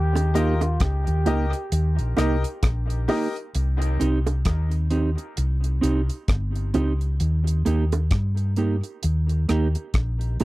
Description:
dub reggae; 66 BPM; 4/4; swing 58% on 16ths; C phrygian; A4 = 440 Hz
mellow flugelhorn; melody; 0.0-2.2 s; F4 to G4; -32 LUFS; equal; dub echo
hollow-body short-scale fingered electric bass; bass; 0.0-10.4 s; G1 to G2; -22 LUFS; equal
deep reggae drum kit; drums; 0.2-10.4 s; hi-hat, kick drum, rim click; -26 LUFS; equal
bongos; percussion; 0.2-10.4 s; -32 LUFS; right 5 dB; dub echo
semi-hollow electric guitar; accompaniment; 0.3-10.4 s; Bb3 to G4; -28 LUFS; right 4 dB; spring reverb, dub echo
bright upright piano; stabs; 0.3-3.3 s; G4 to Eb5; -30 LUFS; left 5 dB; dub echo
little or no reverb; dry, close 1970s-style studio recording; -21 LUFS; side -18 dB against mid
0.0-3.5 A section; 3.5-10.4 B section
0.0 Eb; 3.5 Cm; 7.2 Eb

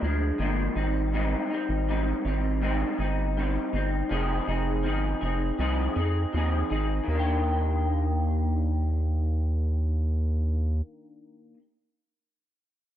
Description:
indie pop, bedroom pop; 81 BPM; 4/4; straight; Eb major; A4 = 440 Hz
electric guitar through a small old amp; accompaniment; 0.0-11.6 s; Ab2 to Ab4; -29 LUFS; left 1 dB; ensemble chorus, warbly pitch drift
round analog bass; bass; 0.0-10.8 s; F1 to F2; -26 LUFS; equal
light reverb, digital ambience; dark, warm production; -24 LUFS; side -11 dB against mid
0.0-7.1 A section; 7.1-10.1 B section
0.0 Bb7; 0.8 Abmaj7; 4.1 Fm7; 7.1 Ebmaj7

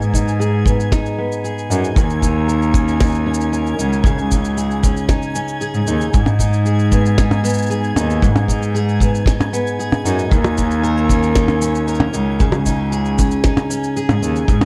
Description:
folktronica; 115 BPM; 4/4; straight; G# minor; A4 = 440 Hz
picked steel-string acoustic guitar; arpeggios; 0.0-14.7 s; G#2 to A#4; -23 LUFS; equal; vintage 12-bit sampler grit, low-pass filter, delay
rich cello; bass; 0.0-14.7 s; C#2 to G#2; -21 LUFS; equal
electronic shaker, snare drum and percussion blips; drums; 0.0-14.7 s; -24 LUFS; equal; overdrive
twinkling granular texture; texture; 0.0-14.7 s; D#5 to G#6; -32 LUFS; equal; built-in reverb
kick drum; drums; 0.1-14.6 s; -19 LUFS; equal
small room ambience; dark, warm production; -17 LUFS; mono
0.0-14.7 A section
kick drops out 14.0-14.5
0.0 G#m; 2.0 D#5; 4.1 C#sus2; 6.1 G#m; 10.3 D#5; 12.4 C#sus2

